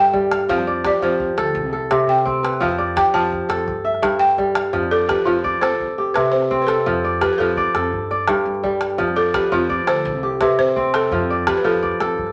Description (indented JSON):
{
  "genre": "west african traditional, West African string and xylophone music",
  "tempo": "113 BPM (dotted quarters)",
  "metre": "12/8",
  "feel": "straight",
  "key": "F lydian",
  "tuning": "A4 = 441 Hz",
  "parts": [
    { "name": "balafon", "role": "melody", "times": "0.0-12.3 s", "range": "F4 to A5", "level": "-22 LUFS", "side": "equal", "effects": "none" },
    { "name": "kora", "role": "arpeggios", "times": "0.0-12.3 s", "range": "G2 to F5", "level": "-21 LUFS", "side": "equal", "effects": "none" },
    { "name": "upright bass", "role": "bass", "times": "0.0-12.3 s", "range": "C2 to G3", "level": "-33 LUFS", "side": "equal", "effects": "none" },
    { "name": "calabash", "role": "percussion", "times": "0.1-12.3 s", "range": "none", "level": "-29 LUFS", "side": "equal", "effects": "none" }
  ],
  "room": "wet studio reverb, RT60 0.7 s",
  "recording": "none",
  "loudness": "-19 LUFS",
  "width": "mono",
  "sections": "0.0-4.7 A section; 4.7-12.3 B section",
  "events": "balafon solo 0.0-4.7",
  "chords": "0.5 F; 1.5 C5; 2.6 F; 3.7 Em/G; 4.7 F; 5.8 C5; 6.9 F; 7.9 G5; 9.0 F; 10.0 C5; 11.1 F",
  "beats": "| 0.49 1.02 1.55 2.08 | 2.61 3.14 3.67 4.20 | 4.73 5.26 5.80 6.33 | 6.86 7.39 7.92 8.45 | 8.98 9.52 10.05 10.58 | 11.11 11.64 12.18"
}